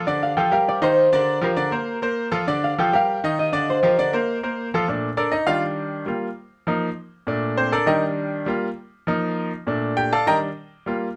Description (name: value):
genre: latin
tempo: 200 BPM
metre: 4/4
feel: straight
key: Bb major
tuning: A4 = 441 Hz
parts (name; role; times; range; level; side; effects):
- concert harp; melody; 0.0-6.0 s; Bb4 to G5; -23 LUFS; equal; none
- bright grand piano; accompaniment; 0.0-11.1 s; Bb2 to Bb5; -24 LUFS; equal; none
room: light reverb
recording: close, detailed microphones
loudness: -22 LUFS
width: mono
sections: 0.0-4.9 A section; 4.9-11.2 B section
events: grand piano solo 4.9-11.2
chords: 0.1 Bbmaj7; 0.7 Ebmaj7; 1.3 Gm7; 1.9 Fsus4; 2.5 Bbmaj7; 3.1 Ebmaj7; 3.7 Gm7; 4.3 Fsus4; 4.9 Bbmaj7; 5.5 Ebmaj7; 6.1 Gm7; 6.7 F7sus4; 7.3 Bbmaj7; 7.9 Ebmaj7; 8.5 Gm7; 9.1 F7sus4; 9.7 Bbmaj7; 10.3 Ebmaj7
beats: | 0.07 0.37 0.67 0.97 | 1.27 1.57 1.87 2.17 | 2.47 2.77 3.07 3.37 | 3.67 3.97 4.27 4.57 | 4.87 5.17 5.47 5.77 | 6.07 6.37 6.67 6.97 | 7.27 7.57 7.87 8.17 | 8.47 8.77 9.07 9.37 | 9.67 9.97 10.27 10.57 | 10.87